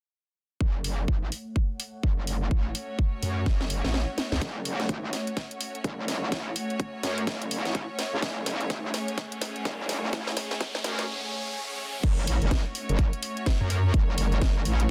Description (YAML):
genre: bass house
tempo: 126 BPM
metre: 4/4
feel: swing 60% on 16ths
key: F# minor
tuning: A4 = 440 Hz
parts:
  - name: metallic wobble bass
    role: bass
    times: 0.6-14.9 s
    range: F#1 to F#2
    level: -31 LUFS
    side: equal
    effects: distortion, chorus, tube saturation, sidechain pumping, high-pass filter
  - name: electronic kick drum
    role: drums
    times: 0.6-14.5 s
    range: none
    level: -28 LUFS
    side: equal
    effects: high-pass filter on kick
  - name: ethereal airy pad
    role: texture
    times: 1.4-11.1 s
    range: A3 to F#5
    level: -41 LUFS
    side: equal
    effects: ensemble chorus, built-in reverb, sidechain pumping
  - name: garage drum kit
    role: drums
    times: 0.8-14.9 s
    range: crash cymbal, hi-hat, snare drum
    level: -36 LUFS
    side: equal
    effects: high-pass filter on hats, high-pass filter on snare, high-pass filter on cymbals
  - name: bright symphonic string section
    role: sustained chords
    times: 2.5-14.9 s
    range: A3 to C#5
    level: -39 LUFS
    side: equal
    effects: sidechain pumping
  - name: riser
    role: sound effects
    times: 6.9-12.0 s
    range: none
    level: -41 LUFS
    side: equal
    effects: none
room: digital ambience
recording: dense, heavily limited modern master, high-pass filter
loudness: -29 LUFS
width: mono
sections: 0.6-4.4 A section; 4.4-12.0 B section; 12.0-14.9 C section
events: drum fill 3.5-4.4, 4.4-11.1; kick drops out 3.9-4.4; build-up 4.4-12.0; filter sweep 4.4-12.0; riser 6.9-12.0; drop 12.0-14.9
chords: 0.6 F#m